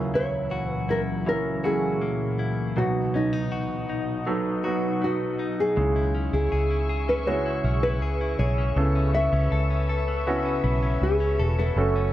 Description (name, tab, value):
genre	pop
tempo	80 BPM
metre	4/4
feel	straight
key	unclear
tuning	A4 = 440 Hz
part	nylon-string guitar	melody	0.0-12.1 s	D#4 to E5	-27 LUFS	equal	none
part	warm grand piano	accompaniment	0.0-12.1 s	B1 to A4	-29 LUFS	right 2 dB	none
part	glassy FM pad	sustained chords	0.0-12.1 s	C#2 to C#6	-31 LUFS	left 1 dB	ensemble chorus, built-in reverb
part	direct-recorded clean electric guitar	arpeggios	0.0-12.1 s	F#2 to A4	-32 LUFS	left 3 dB	tape echo
part	vintage muted fingered electric bass	bass	5.8-12.1 s	E1 to C#2	-24 LUFS	equal	none
room	moderate recital hall reverb, RT60 1.6 s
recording	none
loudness	-22 LUFS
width	side -13 dB against mid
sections	0.0-5.8 A section; 5.8-12.1 B section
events	none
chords	0.0 F#7/C#; 2.8 B; 5.8 C#m; 8.8 Aadd9/C#